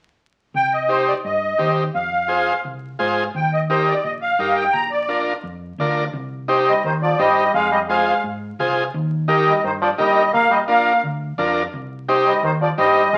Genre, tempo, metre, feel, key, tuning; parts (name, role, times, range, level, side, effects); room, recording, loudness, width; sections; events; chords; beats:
latin; 172 BPM; 4/4; straight; C minor; A4 = 442 Hz
hollow-body short-scale fingered electric bass; bass; 0.5-13.2 s; Bb1 to Ab2; -30 LUFS; equal
musette accordion; melody; 0.6-13.2 s; C5 to Bb5; -21 LUFS; equal
combo organ; accompaniment; 0.9-13.0 s; D4 to C5; -22 LUFS; equal
brilliant trombone; second line; 6.7-13.2 s; Eb3 to Bb3; -23 LUFS; equal
wet studio reverb, RT60 0.7 s; very old 78 rpm record, vinyl crackle; -19 LUFS; mono
0.5-6.1 A section; 6.1-13.2 B section
0.5 Cm; 1.9 Fm; 3.3 Eb; 4.7 Bb; 6.1 Cm; 7.5 Fm; 8.9 Eb; 10.3 Bb; 11.7 Cm
| 0.54 0.89 1.24 1.59 | 1.94 2.29 2.64 2.99 | 3.34 3.69 4.04 4.39 | 4.74 5.09 5.44 5.79 | 6.14 6.49 6.84 7.19 | 7.54 7.89 8.24 8.59 | 8.94 9.29 9.64 9.99 | 10.34 10.69 11.04 11.38 | 11.73 12.08 12.43 12.78 | 13.13